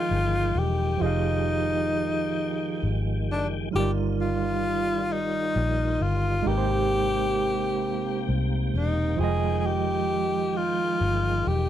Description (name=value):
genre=slow six-eight R&B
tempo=44 BPM (dotted quarters)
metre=6/8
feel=straight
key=F dorian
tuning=A4 = 440 Hz
part: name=breathy tenor saxophone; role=melody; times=0.0-11.7 s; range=D4 to Ab4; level=-26 LUFS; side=left 2 dB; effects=slapback echo
part: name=overdriven tine electric piano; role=accompaniment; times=0.0-11.7 s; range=F3 to G5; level=-30 LUFS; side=right 12 dB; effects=fast tremolo
part: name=tonewheel organ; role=sustained chords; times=0.0-11.7 s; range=C3 to G5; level=-35 LUFS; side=left 3 dB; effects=overdrive, chorus vibrato, slow rotary speaker
part: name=vintage muted fingered electric bass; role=bass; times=0.0-11.7 s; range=E1 to C2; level=-27 LUFS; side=left 1 dB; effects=none
room=little or no reverb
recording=dry, close 1970s-style studio recording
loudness=-23 LUFS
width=side -11 dB against mid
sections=0.0-11.7 A section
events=none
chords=0.0 Fm9; 3.7 Ebmaj9/G; 6.5 Abmaj9; 9.2 Fm9